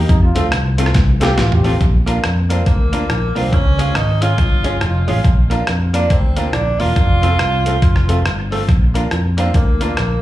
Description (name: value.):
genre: ska.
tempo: 140 BPM.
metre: 4/4.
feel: swing 62% on 8ths.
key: Bb major.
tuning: A4 = 441 Hz.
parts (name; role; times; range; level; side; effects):
vintage hollow-body jazz guitar; accompaniment; 0.0-10.0 s; Ab3 to F4; -25 LUFS; right 4 dB; slapback echo.
bright upright piano; stabs; 0.0-9.9 s; C4 to Bb4; -27 LUFS; left 6 dB; slapback echo.
fingered electric bass; bass; 0.0-10.2 s; E1 to F2; -17 LUFS; equal; none.
clear trombone; melody; 0.1-1.8 s; Eb4 to G4; -23 LUFS; equal; slapback echo.
boom bap sampler-style drum kit; drums; 0.1-10.1 s; hi-hat, kick drum, rim click, snare drum, toms; -17 LUFS; equal; tape echo.
clear tenor saxophone; melody; 2.5-10.2 s; Bb3 to F4; -22 LUFS; right 1 dB; tape echo, slapback echo.
room: studio reverb.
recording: live gig heard through the venue's PA, club reverb.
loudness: -13 LUFS.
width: side -15 dB against mid.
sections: 0.0-1.8 A section; 1.8-10.2 B section.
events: trombone solo 0.0-1.8; drum fill 1.0-1.8.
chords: 0.1 F; 1.8 Bb; 3.5 Db; 5.2 Bb; 7.0 F; 8.7 Bb.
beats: | 0.10 0.52 0.95 1.38 | 1.81 2.24 2.67 3.10 | 3.53 3.96 4.39 4.82 | 5.25 5.67 6.10 6.53 | 6.96 7.39 7.82 8.25 | 8.68 9.12 9.54 9.98.